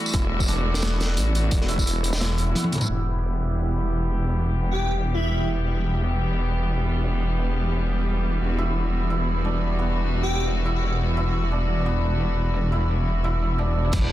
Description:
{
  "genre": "half-time drum and bass",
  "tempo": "174 BPM",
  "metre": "4/4",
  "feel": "half-time",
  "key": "E minor",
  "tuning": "A4 = 441 Hz",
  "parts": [
    { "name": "rich chamber string section", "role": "sustained chords", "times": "0.0-14.1 s", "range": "E3 to G4", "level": "-30 LUFS", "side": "equal", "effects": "sidechain pumping, low-pass filter" },
    { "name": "santur", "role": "arpeggios", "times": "0.0-14.1 s", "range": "B3 to E4", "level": "-31 LUFS", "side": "right 2 dB", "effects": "dub echo" },
    { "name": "phased detuned saw bass", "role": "bass", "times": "0.1-14.1 s", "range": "E1 to A1", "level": "-23 LUFS", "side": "equal", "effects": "phaser" },
    { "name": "crunchy breakbeat drum kit", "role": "drums", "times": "0.1-14.0 s", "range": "crash cymbal, hi-hat, snare drum, tambourine, toms", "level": "-31 LUFS", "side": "equal", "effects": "low-pass filter on hats, low-pass filter on snare, low-pass filter on toms, low-pass filter on cymbals, low-pass filter on perc, low-pass filter on room" },
    { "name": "electronic kick drum", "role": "drums", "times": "0.1-1.8, 13.9-14.0 s", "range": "none", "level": "-23 LUFS", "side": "equal", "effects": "none" },
    { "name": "airy dreamy lead", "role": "melody", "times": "4.7-5.5, 10.2-10.4 s", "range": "E4 to G4", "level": "-30 LUFS", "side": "equal", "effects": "chorus, ping-pong delay" },
    { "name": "impact", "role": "sound effects", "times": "13.9-14.1 s", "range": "none", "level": "-26 LUFS", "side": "equal", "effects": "none" }
  ],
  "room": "little or no reverb",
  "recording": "dense, heavily limited modern master",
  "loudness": "-21 LUFS",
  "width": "side -14 dB against mid",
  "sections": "0.0-2.9 A section; 2.9-13.9 B section",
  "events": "drum fill 2.6-2.9; filter sweep on string section 2.9-13.9; impact 13.9",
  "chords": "0.0 Em"
}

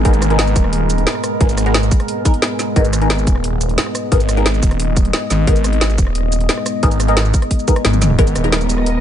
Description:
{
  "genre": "dark technical drum and bass",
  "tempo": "177 BPM",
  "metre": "4/4",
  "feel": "straight",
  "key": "G# minor",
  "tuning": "A4 = 440 Hz",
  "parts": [
    { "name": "deep dark ambient pad", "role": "sustained chords", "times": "0.0-9.0 s", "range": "G#3 to D#5", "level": "-22 LUFS", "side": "equal", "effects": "chorus, built-in reverb, sidechain pumping" },
    { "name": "phased detuned saw bass", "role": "bass", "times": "0.0-9.0 s", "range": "D#1 to G#1", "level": "-16 LUFS", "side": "equal", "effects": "phaser, overdrive, sidechain pumping" },
    { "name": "drum and bass drum kit", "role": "drums", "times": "0.0-8.9 s", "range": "hi-hat, rim click, shaker, snare drum, toms", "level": "-20 LUFS", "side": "equal", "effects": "overdrive" },
    { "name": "filtered dub chord stab", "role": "stabs", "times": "0.1-9.0 s", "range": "B3 to A#4", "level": "-22 LUFS", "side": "left 2 dB", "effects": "phaser, analog chorus, ping-pong delay" },
    { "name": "electronic kick drum", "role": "drums", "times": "0.1-8.3 s", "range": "none", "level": "-14 LUFS", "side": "equal", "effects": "overdrive" },
    { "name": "dark studio string section", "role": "texture", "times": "8.2-9.0 s", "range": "B3 to D#5", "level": "-22 LUFS", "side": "right 2 dB", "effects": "sidechain pumping" }
  ],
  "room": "little or no reverb",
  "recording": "nothing above 10.5 kHz",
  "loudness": "-13 LUFS",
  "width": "side -10 dB against mid",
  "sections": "0.0-8.2 A section",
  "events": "drop 0.0-8.2; drum fill 7.9",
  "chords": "0.0 G#madd9"
}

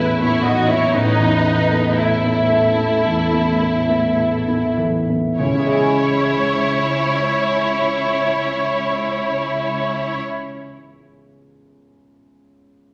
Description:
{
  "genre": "cinematic",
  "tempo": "49-64 BPM",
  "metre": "4/4",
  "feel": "rubato",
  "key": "C# minor",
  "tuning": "A4 = 440 Hz",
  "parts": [
    { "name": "warm symphonic violin section", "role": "melody", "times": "0.0-10.2 s", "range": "D#4 to F#4", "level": "-25 LUFS", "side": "equal", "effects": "none" },
    { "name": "warm symphonic violin section", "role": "second line", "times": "0.0-10.2 s", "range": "D#4 to C#5", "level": "-27 LUFS", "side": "equal", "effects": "none" },
    { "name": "dark grand piano", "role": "accompaniment", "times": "0.0-12.9 s", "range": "A1 to G#5", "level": "-24 LUFS", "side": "equal", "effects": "none" },
    { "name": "warm symphonic viola section", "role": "accompaniment", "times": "0.0-10.2 s", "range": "A4 to D#5", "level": "-28 LUFS", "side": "equal", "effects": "none" },
    { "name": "concert harp", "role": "arpeggios", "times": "0.0-10.5 s", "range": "A2 to B5", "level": "-26 LUFS", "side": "equal", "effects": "none" },
    { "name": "warm symphonic cello section", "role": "bass", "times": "0.0-10.2 s", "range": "A3 to D#4", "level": "-30 LUFS", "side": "equal", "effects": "none" },
    { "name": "warm symphonic double bass section", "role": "bass", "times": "0.0-10.2 s", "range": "A1 to C#2", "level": "-28 LUFS", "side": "equal", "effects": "none" }
  ],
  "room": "wet recital hall reverb, RT60 1.6 s",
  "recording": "none",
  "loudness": "-18 LUFS",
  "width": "mono",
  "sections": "0.0-5.4 A section; 5.4-10.2 B section",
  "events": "slowing down 0.0-5.4",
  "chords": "0.0 Asus2; 5.4 C#madd9"
}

